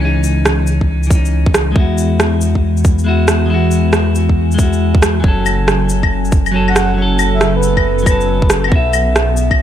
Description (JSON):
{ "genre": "future garage", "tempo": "138 BPM", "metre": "4/4", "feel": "swing 65% on 16ths", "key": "unclear", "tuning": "A4 = 440 Hz", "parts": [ { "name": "clean electric guitar", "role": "accompaniment", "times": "0.0-9.6 s", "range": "E3 to E5", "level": "-18 LUFS", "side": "left 3 dB", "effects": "sidechain pumping, ping-pong delay" }, { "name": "dark detuned saw bass", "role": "bass", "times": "0.0-9.6 s", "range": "F#1 to E2", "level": "-16 LUFS", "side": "equal", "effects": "sidechain pumping" }, { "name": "electronic shaker, rim click and claves", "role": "drums", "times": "0.2-9.6 s", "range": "none", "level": "-18 LUFS", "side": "right 1 dB", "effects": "overdrive" }, { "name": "electronic kick drum", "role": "drums", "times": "0.8-9.6 s", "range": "none", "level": "-13 LUFS", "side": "equal", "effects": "overdrive" }, { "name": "warbly tape-like pad", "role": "sustained chords", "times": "2.7-9.6 s", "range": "E3 to G#5", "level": "-22 LUFS", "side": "equal", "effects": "chorus, built-in reverb, sidechain pumping" }, { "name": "breathy flute-like synth lead", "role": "melody", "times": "6.7-8.5 s", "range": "B4 to F#5", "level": "-20 LUFS", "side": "right 1 dB", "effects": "chorus, vintage 12-bit sampler grit, ping-pong delay" } ], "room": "little or no reverb", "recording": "none", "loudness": "-11 LUFS", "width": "side -10 dB against mid", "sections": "0.0-9.6 A section", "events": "none", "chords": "0.0 C#madd9; 1.8 Eadd9; 5.2 F#m; 8.7 Bsus4" }